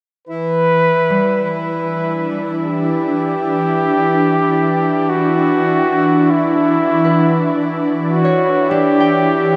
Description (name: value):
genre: ambient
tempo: 50 BPM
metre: 4/4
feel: straight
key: E dorian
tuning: A4 = 440 Hz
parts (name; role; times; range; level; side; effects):
- warm flugelhorn; melody; 0.3-9.6 s; E4 to B4; -19 LUFS; equal; delay
- ethereal airy pad; sustained chords; 0.3-9.6 s; E3 to E4; -20 LUFS; equal; ensemble chorus, built-in reverb
- hand-pumped harmonium; drone; 0.3-9.6 s; E3 to E4; -27 LUFS; equal; none
- concert harp; arpeggios; 1.1-9.6 s; G3 to G5; -24 LUFS; equal; delay
room: wet huge ambient reverb, RT60 8.0 s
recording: none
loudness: -15 LUFS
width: mono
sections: 0.3-9.6 A section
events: none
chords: 0.3 Em7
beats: | 0.28 1.48 2.67 3.88 | 5.08 6.28 7.47 8.68